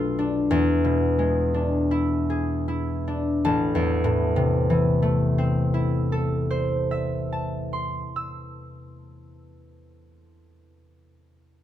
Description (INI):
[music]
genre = classical, solo harp piece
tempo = 37-49 BPM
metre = 4/4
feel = rubato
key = A minor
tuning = A4 = 439 Hz
[part]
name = concert harp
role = solo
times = 0.0-10.7 s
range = A1 to E6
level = -21 LUFS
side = left 1 dB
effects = none
[sound]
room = light reverb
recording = minimal, uncompressed stereo recording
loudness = -21 LUFS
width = side -11 dB against mid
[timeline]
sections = 0.0-3.4 A section; 3.4-9.2 B section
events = slowing down 0.0-3.4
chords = 0.0 Bm7b5; 0.5 E7; 3.4 Am